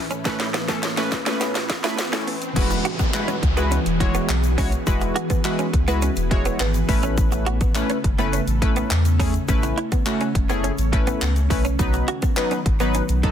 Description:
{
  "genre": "dance-pop",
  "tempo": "104 BPM",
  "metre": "4/4",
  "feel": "straight",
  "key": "E major",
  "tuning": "A4 = 440 Hz",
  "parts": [
    { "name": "funky polysynth comp", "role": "accompaniment", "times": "0.0-13.3 s", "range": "F#3 to C#5", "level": "-25 LUFS", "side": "equal", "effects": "chorus, sidechain pumping" },
    { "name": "ethereal airy pad", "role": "sustained chords", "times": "0.0-13.3 s", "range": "A2 to B4", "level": "-29 LUFS", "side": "equal", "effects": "ensemble chorus, built-in reverb, sidechain pumping" },
    { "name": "riser and downlifter", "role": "sound effects", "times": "0.0-7.2 s", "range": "none", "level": "-32 LUFS", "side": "equal", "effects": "none" },
    { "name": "direct-recorded clean electric guitar", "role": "riff", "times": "0.1-13.3 s", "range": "B3 to F#4", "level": "-28 LUFS", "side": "right 4 dB", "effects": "lush chorus" },
    { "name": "house drum kit", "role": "drums", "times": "0.1-13.3 s", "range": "crash cymbal, handclaps, hi-hat, kick drum, snare drum", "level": "-23 LUFS", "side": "equal", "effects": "none" },
    { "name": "egg shaker", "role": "percussion", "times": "0.1-13.2 s", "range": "none", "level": "-41 LUFS", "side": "left 12 dB", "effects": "none" },
    { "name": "saturated sub bass", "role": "bass", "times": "2.6-13.3 s", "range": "E1 to E2", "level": "-22 LUFS", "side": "equal", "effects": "sidechain pumping" }
  ],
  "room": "digital ambience",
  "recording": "dense, heavily limited modern master, high-pass filter",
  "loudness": "-19 LUFS",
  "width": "side -9 dB against mid",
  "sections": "0.0-2.6 A section; 2.6-13.3 B section",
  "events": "build-up 0.0-2.6; drum fill 0.0-2.6; riser 0.0-2.6; drop 2.6-13.3",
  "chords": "0.0 Aadd9; 2.6 Eadd9; 6.9 Aadd9; 11.8 B",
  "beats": "| 0.25 0.83 1.41 1.98 | 2.56 3.14 3.71 4.29 | 4.87 5.45 6.02 6.60 | 7.18 7.75 8.33 8.91 | 9.48 10.06 10.64 11.21 | 11.79 12.37 12.95"
}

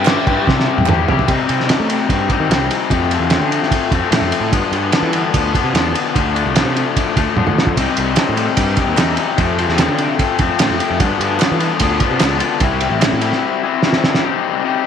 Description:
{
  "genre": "indie rock",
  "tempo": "148 BPM",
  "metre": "4/4",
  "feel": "straight",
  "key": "unclear",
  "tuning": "A4 = 440 Hz",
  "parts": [
    { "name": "raw garage guitar", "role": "riff", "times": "0.0-14.9 s", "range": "F2 to G4", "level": "-17 LUFS", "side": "left 9 dB", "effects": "overdrive" },
    { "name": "fuzz picked electric bass", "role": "bass", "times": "0.0-13.3 s", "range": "A1 to A3", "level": "-20 LUFS", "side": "right 2 dB", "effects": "overdrive" },
    { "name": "cloth-damped thuddy drum kit", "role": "drums", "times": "0.1-14.2 s", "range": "crash cymbal, kick drum, ride cymbal, snare drum, toms", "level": "-17 LUFS", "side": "right 3 dB", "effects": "none" },
    { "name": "group handclap", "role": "percussion", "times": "0.1-1.0, 8.2-13.1 s", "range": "none", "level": "-28 LUFS", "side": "right 17 dB", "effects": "none" }
  ],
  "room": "light reverb, small room ambience",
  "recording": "1960s-style stereo with parts hard left and right",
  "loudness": "-13 LUFS",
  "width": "side -8 dB against mid",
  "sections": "0.0-1.3 A section; 1.3-14.2 B section",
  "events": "drum fill 0.5-1.3, 7.4-7.8, 13.8-14.2",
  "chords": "0.0 C; 1.3 Cm; 2.9 F; 4.5 G7(no3); 6.2 Dm7; 7.8 Cm; 9.4 F; 11.0 G7(no3); 12.6 C; 14.2 Cm",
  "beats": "0.07 0.48 0.88 | 1.29 1.69 2.10 2.50 | 2.91 3.31 3.72 4.12 | 4.53 4.93 5.34 5.75 | 6.15 6.55 6.96 7.36 | 7.77 8.17 8.58 8.98 | 9.39 9.79 10.20 10.60 | 11.00 11.41 11.81 12.21 | 12.62 13.02 13.43 13.83 | 14.23 14.64"
}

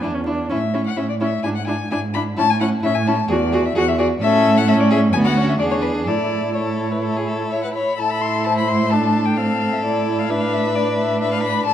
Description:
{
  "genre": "quick classical-period movement for string quartet",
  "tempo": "129 BPM",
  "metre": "4/4",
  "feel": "straight",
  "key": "A major, A minor from 8.0 s",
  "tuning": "A4 = 440 Hz",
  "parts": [
    { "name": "rich violin", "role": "melody", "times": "0.0-11.7 s", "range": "B4 to C6", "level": "-22 LUFS", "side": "left 6 dB", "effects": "none" },
    { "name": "clear violin", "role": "second line", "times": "0.0-11.7 s", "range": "E4 to C#5", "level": "-25 LUFS", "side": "left 2 dB", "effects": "none" },
    { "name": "clear viola", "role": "accompaniment", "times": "0.0-11.7 s", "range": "B3 to F#4", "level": "-23 LUFS", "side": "right 2 dB", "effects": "none" },
    { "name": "warm cello", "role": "bass", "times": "0.0-11.7 s", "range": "D2 to A2", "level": "-21 LUFS", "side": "right 2 dB", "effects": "none" }
  ],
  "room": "wet recital hall reverb, RT60 1.7 s",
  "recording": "dark, warm production, vinyl crackle",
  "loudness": "-16 LUFS",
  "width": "side -10 dB against mid",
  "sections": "0.0-8.0 A section; 8.0-11.7 B section",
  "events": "none",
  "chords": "0.0 N.C.; 0.5 A; 1.4 E7/G#; 2.4 A; 3.3 Eadd9; 4.2 A; 5.1 Bm/D; 5.6 E7; 6.1 A; 8.0 Am; 9.8 E5/A",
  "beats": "0.04 | 0.51 0.98 1.45 1.92 | 2.38 2.84 3.30 3.76 | 4.22 4.68 5.13 5.60 | 6.07 6.55 7.03 7.51 | 7.98 8.45 8.92 9.38 | 9.84 10.30 10.76 11.21 | 11.67"
}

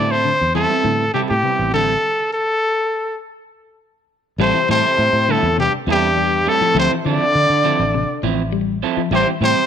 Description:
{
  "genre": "afrobeat",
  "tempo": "102 BPM",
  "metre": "4/4",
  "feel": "straight",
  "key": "A minor",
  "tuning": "A4 = 440 Hz",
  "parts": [
    { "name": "bright trumpet", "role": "melody", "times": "0.0-9.7 s", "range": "G4 to D5", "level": "-17 LUFS", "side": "left 1 dB", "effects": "none" },
    { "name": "combo organ", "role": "accompaniment", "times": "0.0-1.7 s", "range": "G3 to E4", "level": "-29 LUFS", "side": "right 11 dB", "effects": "none" },
    { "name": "semi-hollow electric guitar", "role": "arpeggios", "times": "0.0-9.7 s", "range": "C3 to G3", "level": "-25 LUFS", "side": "left 11 dB", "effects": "slapback echo" },
    { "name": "electric guitar at the edge of break-up", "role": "stabs", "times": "0.0-9.6 s", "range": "F3 to A4", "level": "-24 LUFS", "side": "right 10 dB", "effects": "none" },
    { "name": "fingered electric bass", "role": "bass", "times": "0.0-9.5 s", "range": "A1 to D3", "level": "-22 LUFS", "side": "equal", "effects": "none" },
    { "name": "bright alto saxophone", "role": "second line", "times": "4.4-9.7 s", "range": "G3 to D4", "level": "-27 LUFS", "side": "right 10 dB", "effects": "none" },
    { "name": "brilliant bass trombone", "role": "second line", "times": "4.4-9.7 s", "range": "G2 to D3", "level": "-26 LUFS", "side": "left 8 dB", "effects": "none" }
  ],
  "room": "moderate echo chamber reverb, RT60 1.7 s, small room ambience",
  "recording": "1960s-style stereo with parts hard left and right",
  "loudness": "-15 LUFS",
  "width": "side -8 dB against mid",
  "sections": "0.0-4.4 A section; 4.4-9.7 B section",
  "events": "stop 2.0-4.4",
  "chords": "0.0 Am7; 2.0 N.C.; 4.4 Am7",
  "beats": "0.26 0.85 1.45 | 2.04 2.63 3.22 3.81 | 4.40 4.99 5.58 6.17 | 6.76 7.35 7.94 8.53 | 9.12"
}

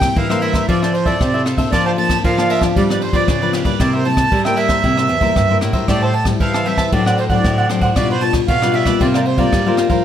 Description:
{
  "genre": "samba and choro",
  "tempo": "115 BPM",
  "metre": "4/4",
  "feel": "straight",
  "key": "unclear",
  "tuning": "A4 = 438 Hz",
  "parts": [
    { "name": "accordion", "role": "melody", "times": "0.0-9.8 s", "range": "C5 to A5", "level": "-20 LUFS", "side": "right 3 dB", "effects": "none" },
    { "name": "nylon-string guitar", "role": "accompaniment", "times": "0.0-10.0 s", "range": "G2 to A4", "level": "-20 LUFS", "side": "left 7 dB", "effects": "none" },
    { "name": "nylon-string guitar", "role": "bass", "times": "0.0-10.0 s", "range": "E2 to G3", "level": "-20 LUFS", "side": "equal", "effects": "none" },
    { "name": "jazz brush drum kit", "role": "drums", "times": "0.0-10.0 s", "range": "kick drum, ride cymbal, rim click", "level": "-20 LUFS", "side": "equal", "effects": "none" },
    { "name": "cavaquinho", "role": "accompaniment", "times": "0.2-10.0 s", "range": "D4 to A5", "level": "-23 LUFS", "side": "right 2 dB", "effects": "none" }
  ],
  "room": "light reverb",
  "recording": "none",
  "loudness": "-13 LUFS",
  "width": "side -10 dB against mid",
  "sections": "0.0-10.0 A section",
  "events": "none",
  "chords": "0.0 C7; 0.7 Fmaj7; 1.7 Bbmaj7/F; 2.8 G7; 3.8 C7; 5.9 Am7; 6.9 D7/A; 8.0 G7/B; 9.0 C7sus4",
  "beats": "0.16 0.68 1.20 | 1.72 2.24 2.76 3.28 | 3.80 4.32 4.84 5.36 | 5.88 6.41 6.93 7.45 | 7.97 8.49 9.01 9.53"
}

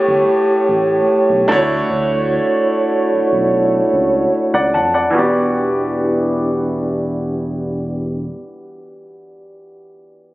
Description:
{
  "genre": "contemporary R&B",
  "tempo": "74 BPM",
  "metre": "4/4",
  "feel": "straight",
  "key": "E dorian",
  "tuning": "A4 = 440 Hz",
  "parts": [
    { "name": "bright baby grand piano", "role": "accompaniment", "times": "0.0-10.3 s", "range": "A2 to A5", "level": "-20 LUFS", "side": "equal", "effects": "none" },
    { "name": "mellow French horn section", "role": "sustained chords", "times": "0.0-8.3 s", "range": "E3 to C#5", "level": "-16 LUFS", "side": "right 1 dB", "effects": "none" },
    { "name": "round analog bass", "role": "bass", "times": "0.1-8.3 s", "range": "E1 to F2", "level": "-26 LUFS", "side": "equal", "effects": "none" }
  ],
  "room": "moderate plate reverb, RT60 3.4 s",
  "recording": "recorded on a phone in the room, studio reverb, compression, low-pass filter",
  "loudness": "-14 LUFS",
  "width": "side -17 dB against mid",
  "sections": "0.0-5.1 A section; 5.1-8.4 B section",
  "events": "filter sweep 0.0-5.1",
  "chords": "0.0 A9; 1.5 Dmaj9; 5.1 Em7",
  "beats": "0.28 1.09 | 1.90 2.71 3.52 4.33 | 5.14 5.95 6.76 7.57"
}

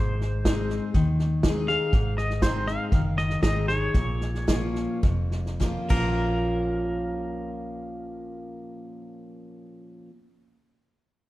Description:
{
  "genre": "honky-tonk and classic country",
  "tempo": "98-122 BPM",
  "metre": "4/4",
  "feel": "straight",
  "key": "Bb minor",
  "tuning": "A4 = 441 Hz",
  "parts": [
    { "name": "twangy electric guitar", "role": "melody", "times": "0.0-10.1 s", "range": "Bb4 to F5", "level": "-31 LUFS", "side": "equal", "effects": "tremolo" },
    { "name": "picked steel-string acoustic guitar", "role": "accompaniment", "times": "0.0-10.1 s", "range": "F2 to Ab4", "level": "-28 LUFS", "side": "left 1 dB", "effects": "none" },
    { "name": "vintage muted fingered electric bass", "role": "bass", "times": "0.0-10.1 s", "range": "F1 to Eb2", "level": "-29 LUFS", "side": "equal", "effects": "none" },
    { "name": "natural country drum kit", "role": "drums", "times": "0.2-6.0 s", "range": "crash cymbal, hi-hat, kick drum, snare drum", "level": "-26 LUFS", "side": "equal", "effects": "none" }
  ],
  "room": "moderate recital hall reverb, RT60 1.4 s",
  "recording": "dark, warm production",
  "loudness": "-23 LUFS",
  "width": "side -16 dB against mid",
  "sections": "0.0-1.9 A section; 1.9-6.2 B section; 6.2-11.1 C section",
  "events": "slowing down 1.9-6.2; drum fill 5.6-6.2",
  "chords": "0.0 Ab; 3.9 Bbm",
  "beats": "0.46 0.95 1.44 | 1.93 2.42 2.92 3.43 | 3.95 4.48 5.04 5.61 | 6.21 6.82 7.44 8.05 | 8.67 9.28 9.90"
}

